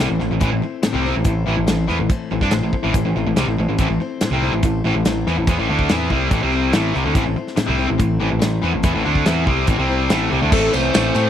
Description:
classic rock; 142 BPM; 4/4; straight; A minor; A4 = 440 Hz
picked steel-string acoustic guitar; accompaniment; 0.0-11.3 s; A2 to C5; -26 LUFS; left 6 dB
distorted electric guitar; riff; 0.0-11.3 s; A2 to E4; -23 LUFS; left 9 dB; overdrive
distorted electric guitar; riff; 0.0-11.3 s; A2 to E4; -23 LUFS; right 11 dB; distortion
growling picked electric bass; bass; 0.0-11.3 s; A1 to A2; -22 LUFS; right 1 dB; overdrive
big rock drum kit; drums; 0.2-11.3 s; crash cymbal, hi-hat, kick drum, ride cymbal, snare drum; -21 LUFS; equal
overdriven slide guitar; melody; 10.5-11.3 s; A4 to C5; -20 LUFS; equal
tambourine; percussion; 10.5-11.3 s; -35 LUFS; right 12 dB
small room ambience; dry, close 1970s-style studio recording; -16 LUFS; side -10 dB against mid
0.0-10.5 A section
0.0 Am

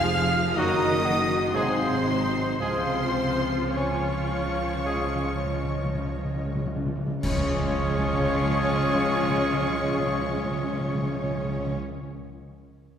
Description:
classical, slow romantic movement for symphony orchestra; 49-65 BPM; 4/4; rubato; Db major; A4 = 440 Hz
rich studio violin section; melody; 0.0-11.8 s; C6 to F6; -34 LUFS; left 2 dB
mellow large flute ensemble; second line; 0.0-7.2 s; Eb5 to Bb5; -36 LUFS; equal
rich studio violin section; second line; 0.0-11.8 s; C5 to F5; -35 LUFS; left 3 dB
warm clarinet; second line; 0.0-11.8 s; C5 to F5; -36 LUFS; left 1 dB
warm oboe; second line; 0.0-11.8 s; C5 to F5; -34 LUFS; equal
rich studio viola section; accompaniment; 0.0-11.8 s; F3 to Ab4; -33 LUFS; right 1 dB
mellow French horn section; sustained chords; 0.0-11.7 s; C4 to F4; -33 LUFS; left 4 dB
dark tuba; bass; 0.0-11.8 s; F1 to Db2; -34 LUFS; right 2 dB
rich studio cello section; bass; 0.0-11.8 s; C3 to Db4; -34 LUFS; right 2 dB
rich studio double bass section; bass; 0.0-11.8 s; F1 to Db2; -34 LUFS; right 1 dB
clear trombone section; sustained chords; 0.6-11.8 s; F3 to Bb3; -35 LUFS; right 2 dB
clear trumpet; stabs; 0.6-11.8 s; Gb4 to Ab4; -32 LUFS; equal
timpani; percussion; 2.6-11.7 s; Db3; -31 LUFS; right 1 dB
clash cymbals and concert bass drum; percussion; 7.2-9.5 s; -32 LUFS; equal
wet concert hall reverb, RT60 2.2 s; recorded in a church or concert hall; -23 LUFS; side -8 dB against mid
0.0-7.2 A section; 7.2-12.0 B section
slowing down 0.0-7.2; timpani fill 2.6-7.2; band accent 7.2-8.4
0.0 Db (rootless); 0.6 Ebm/Gb; 1.6 Ab7; 2.6 Db

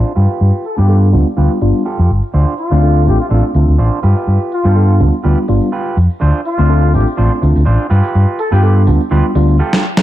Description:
filtered disco house; 124 BPM; 4/4; swing 55% on 16ths; A4 = 439 Hz
electric guitar at the edge of break-up; riff; 0.0-9.8 s; D4 to C5; -21 LUFS; right 3 dB; low-pass filter
hollow-body short-scale fingered electric bass; bass; 0.2-9.6 s; G1 to G2; -10 LUFS; equal; low-pass filter
tambourine; percussion; 0.2-9.6 s; -54 LUFS; left 2 dB
warm horn section; melody; 0.6-8.7 s; F4 to A4; -20 LUFS; left 1 dB; low-pass filter, diffuse ambient delay
mellow tine electric piano; accompaniment; 0.8-9.6 s; G3 to A4; -17 LUFS; equal; phaser, vintage 12-bit sampler grit, low-pass filter
electronic snare drum; drums; 9.7-10.0 s; -11 LUFS; equal; overdrive
light reverb, digital ambience; -10 LUFS; side -14 dB against mid
0.0-10.0 A section
filter sweep 0.0-10.0; break 9.6-10.0; drum fill 9.7-10.0
0.2 G7; 2.3 Dm7; 4.0 G7; 6.2 Dm7; 7.9 G7

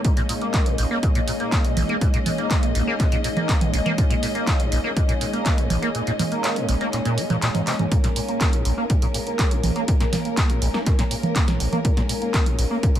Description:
acid house; 122 BPM; 4/4; straight; Bb minor; A4 = 440 Hz
muted studio string section; sustained chords; 0.0-13.0 s; Ab3 to Eb5; -30 LUFS; left 3 dB; sidechain pumping
liquid acid bass; riff; 0.0-13.0 s; Bb1 to Bb3; -25 LUFS; equal; overdrive, lush chorus, sidechain pumping, digital delay
electronic kick drum; drums; 0.0-12.9 s; -20 LUFS; equal
punchy analog drum machine; drums; 0.0-13.0 s; congas, handclaps, hi-hat, snare drum; -26 LUFS; right 2 dB
granular cloud pad; texture; 0.0-13.0 s; Bb3 to F5; -30 LUFS; equal; built-in reverb, sidechain pumping
light reverb; -19 LUFS; side -11 dB against mid
0.0-13.0 A section
filter sweep on acid bass 0.0-13.0; kick drops out 5.9-7.9; drum fill 7.7
0.0 Bbm7

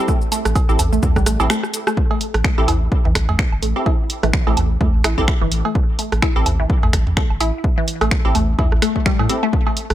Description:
minimal techno; 127 BPM; 4/4; swing 57% on 16ths; A minor; A4 = 439 Hz
wavetable chord stab; stabs; 0.0-9.4 s; C4 to A4; -25 LUFS; right 1 dB; dub echo
flickering grainy texture; texture; 0.2-2.0 s; A4; -35 LUFS; equal
resonant blip pluck; riff; 0.1-9.7 s; E3 to E4; -24 LUFS; left 1 dB; phaser, sidechain pumping, digital delay
electronic kick drum; drums; 0.1-9.6 s; -18 LUFS; equal
maracas; percussion; 0.1-2.0 s; -30 LUFS; left 5 dB
punchy analog drum machine; drums; 0.3-9.9 s; finger snaps, hi-hat, rim click; -23 LUFS; equal
techno drum kit; percussion; 0.3-9.9 s; cowbell, rim click, toms, woodblock; -23 LUFS; right 2 dB; overdrive, dub echo
saturated sub bass; bass; 0.5-9.9 s; G1 to A2; -20 LUFS; equal; sidechain pumping
little or no reverb; -15 LUFS; side -12 dB against mid
0.0-2.0 A section; 2.0-9.9 A section
drop 0.0-2.0, 2.0-9.9; break 1.5-2.0; drum fill 1.5-2.0
0.0 N.C.; 2.0 A5

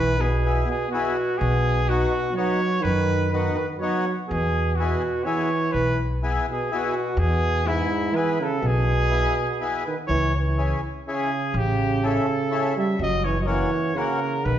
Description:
alpine folk, alpine dance band; 124 BPM; 3/4; swing 54% on 8ths; E major, C# minor from 10.1 s; A4 = 438 Hz
clear trumpet; melody; 0.0-14.6 s; E4 to E5; -26 LUFS; left 1 dB
warm euphonium; second line; 0.0-14.6 s; G#2 to G3; -26 LUFS; right 4 dB
upright bass; bass; 0.0-14.6 s; F#1 to F#2; -24 LUFS; equal
accordion; accompaniment; 0.5-14.2 s; A#3 to A4; -29 LUFS; left 4 dB
wet recital hall reverb, RT60 1.3 s; heard from further back in the room, nothing above 7.6 kHz; -21 LUFS; side -10 dB against mid
0.0-10.1 A section; 10.1-14.6 B section
0.0 Eadd9; 1.4 Badd9; 4.3 E; 10.1 C#m; 11.5 A7; 13.0 F#7

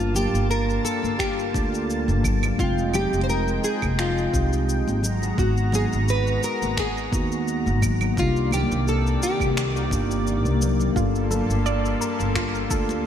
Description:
sunset chillout; 86 BPM; 4/4; swing 54% on 16ths; G phrygian; A4 = 440 Hz
nylon-string guitar; melody; 0.0-10.2 s; F4 to C5; -27 LUFS; equal; analog chorus, ping-pong delay
mellow tine electric piano; accompaniment; 0.0-13.1 s; Ab3 to A5; -28 LUFS; moving between left 5 dB and right 4 dB; auto-pan, low-pass filter, ping-pong delay
lush unison pad; sustained chords; 0.0-13.1 s; C3 to Bb5; -30 LUFS; equal; chorus
upright bass; bass; 0.0-13.1 s; F1 to Eb2; -25 LUFS; equal
electronic cabasa, finger snaps and claves; drums; 0.0-13.0 s; -32 LUFS; equal; gated reverb
congas; percussion; 0.1-13.0 s; -32 LUFS; left 4 dB
electronic kick drum; drums; 1.2-12.9 s; -28 LUFS; equal
soft round pluck; arpeggios; 11.0-12.9 s; F4 to D5; -30 LUFS; right 3 dB; chorus, ping-pong delay
moderate lush hall reverb, RT60 2.5 s; bright 1980s-style digital production; -20 LUFS; side -9 dB against mid
0.0-13.1 A section
0.0 Gm9; 2.6 Fm9; 5.0 Abm9; 8.2 Cm9; 11.0 Gm9

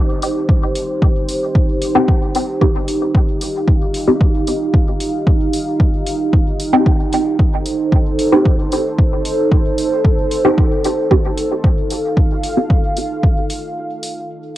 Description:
dub techno; 113 BPM; 4/4; straight; A4 = 440 Hz
dark analog pad; sustained chords; 0.0-14.6 s; Eb4 to F5; -20 LUFS; right 1 dB; chorus, sidechain pumping, cassette tape
electronic hi-hat; drums; 0.2-14.1 s; -28 LUFS; equal; overdrive, cassette tape
electronic kick drum; drums; 0.5-13.3 s; -14 LUFS; equal; overdrive, cassette tape
filtered dub chord stab; stabs; 2.0-12.7 s; C4 to G4; -17 LUFS; equal; phaser, sidechain pumping, cassette tape, dub echo
light reverb, digital ambience; home recording on cassette; -13 LUFS; side -14 dB against mid
0.0-14.6 A section
filter sweep on synth stab 0.0-14.6; break 13.8-14.6
0.0 Cm

